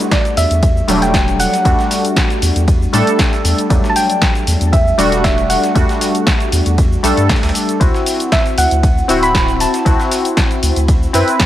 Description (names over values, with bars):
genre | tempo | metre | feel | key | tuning
deep house | 117 BPM | 4/4 | swing 53% on 16ths | E minor | A4 = 440 Hz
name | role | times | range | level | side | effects
warm analog keys | stabs | 0.0-11.5 s | F#3 to B4 | -17 LUFS | equal | chorus, sidechain pumping, dub echo
punchy analog drum machine | drums | 0.0-11.5 s | cabasa, hi-hat, snare drum | -20 LUFS | equal | none
soft round pluck | melody | 0.1-10.3 s | D5 to B5 | -19 LUFS | equal | chorus, digital delay
breakbeat sampler-style drum kit | drums | 0.1-11.5 s | hi-hat, ride cymbal, snare drum | -30 LUFS | right 1 dB | none
electronic kick drum | drums | 0.1-11.5 s | none | -15 LUFS | equal | none
round analog bass | bass | 0.4-11.2 s | D1 to A2 | -17 LUFS | equal | tube saturation, sidechain pumping
room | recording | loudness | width
light reverb, digital ambience | none | -11 LUFS | side -13 dB against mid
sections
0.0-11.5 A section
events
none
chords
0.0 Em11; 7.8 D9